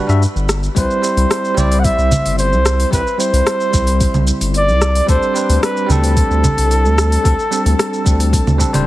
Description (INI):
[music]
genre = sunset chillout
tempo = 111 BPM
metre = 4/4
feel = straight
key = unclear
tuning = A4 = 440 Hz
[part]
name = bell-like tine electric piano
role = accompaniment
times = 0.0-8.9 s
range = G3 to E5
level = -20 LUFS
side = equal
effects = auto-pan, shimmer reverb
[part]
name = round analog bass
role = bass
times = 0.1-8.9 s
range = D1 to G2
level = -15 LUFS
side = equal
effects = none
[part]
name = smooth R&B drum kit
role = drums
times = 0.1-8.8 s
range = congas, hi-hat, rim click, shaker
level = -20 LUFS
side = right 1 dB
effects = overdrive, small room reverb
[part]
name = warm flugelhorn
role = melody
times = 0.8-8.9 s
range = A4 to F#5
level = -18 LUFS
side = equal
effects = tape echo, shimmer reverb
[part]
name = electronic kick drum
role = drums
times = 0.8-8.7 s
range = none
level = -18 LUFS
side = equal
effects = small room reverb
[sound]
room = light reverb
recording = heavily compressed radio sound, multiband compression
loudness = -12 LUFS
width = side -16 dB against mid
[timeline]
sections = 0.0-8.9 A section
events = none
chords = 0.0 Gmaj7(no3); 0.8 C; 5.1 D7sus4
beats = 0.22 | 0.76 1.30 1.84 2.38 | 2.92 3.46 4.00 4.54 | 5.08 5.62 6.17 6.71 | 7.25 7.79 8.33